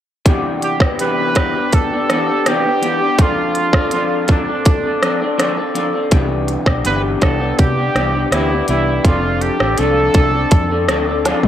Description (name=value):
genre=indie pop, bedroom pop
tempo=82 BPM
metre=4/4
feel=straight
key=C major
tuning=A4 = 440 Hz
part: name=electric guitar through a small old amp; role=accompaniment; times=0.3-11.5 s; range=C3 to A4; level=-18 LUFS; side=left 2 dB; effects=lush chorus, warbly pitch drift
part: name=organic electronic drum kit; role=drums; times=0.3-11.5 s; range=hi-hat, kick drum, rim click, snare drum, toms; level=-16 LUFS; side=equal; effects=none
part: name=clear trumpet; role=melody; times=0.6-11.2 s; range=D4 to B4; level=-20 LUFS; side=right 3 dB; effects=analog chorus, slapback echo
part: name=vintage muted fingered electric bass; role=bass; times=6.1-11.5 s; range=F1 to C3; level=-21 LUFS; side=equal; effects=none
room=light reverb, digital ambience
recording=none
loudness=-13 LUFS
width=side -10 dB against mid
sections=0.3-11.5 A section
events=drum fill 11.2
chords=0.3 Cmaj9; 3.2 F6; 6.1 Cmaj9; 9.0 F6